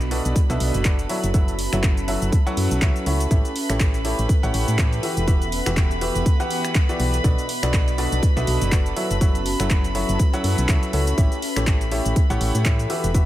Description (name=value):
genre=piano house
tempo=122 BPM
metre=4/4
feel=swing 57% on 16ths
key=unclear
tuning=A4 = 443 Hz
part: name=warm studio violin section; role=sustained chords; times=0.0-13.3 s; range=B4 to B5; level=-30 LUFS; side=equal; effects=sidechain pumping
part: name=clear grand piano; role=riff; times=0.0-13.3 s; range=B2 to F#5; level=-27 LUFS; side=equal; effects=sidechain pumping, ping-pong delay
part: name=solid FM bass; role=bass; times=0.0-13.3 s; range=E1 to A2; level=-23 LUFS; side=equal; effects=sidechain pumping
part: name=punchy analog drum machine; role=drums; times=0.0-13.3 s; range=finger snaps, handclaps, hi-hat, shaker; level=-29 LUFS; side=equal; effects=overdrive
part: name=airy breathy pad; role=texture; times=0.0-13.3 s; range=B3 to A5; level=-30 LUFS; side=equal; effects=chorus, sidechain pumping
part: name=electronic kick drum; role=drums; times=0.4-13.3 s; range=none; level=-19 LUFS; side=equal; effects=none
room=little or no reverb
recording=none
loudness=-18 LUFS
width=side -14 dB against mid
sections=0.0-13.3 A section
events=none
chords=0.0 Bm7; 1.1 F#m7; 3.3 A7; 5.0 Emadd9; 7.2 Bm7; 9.0 F#m7; 11.2 A7